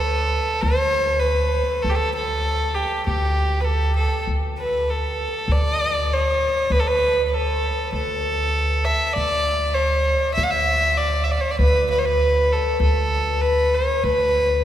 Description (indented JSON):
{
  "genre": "arabic",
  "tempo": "98 BPM",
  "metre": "4/4",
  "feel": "straight",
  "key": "D maqam rast",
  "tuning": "A4 = 440 Hz",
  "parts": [
    { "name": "warm violin", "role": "melody", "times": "0.0-14.6 s", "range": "G4 to F#5-49c", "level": "-20 LUFS", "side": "equal", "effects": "none" },
    { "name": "upright bass", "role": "bass", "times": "0.0-14.6 s", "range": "D2", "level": "-23 LUFS", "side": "right 1 dB", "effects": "none" }
  ],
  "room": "wet cathedral reverb, RT60 6.4 s",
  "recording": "recorded in a church or concert hall",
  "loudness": "-18 LUFS",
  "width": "side -11 dB against mid",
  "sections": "0.0-14.6 A section",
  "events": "none",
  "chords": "none"
}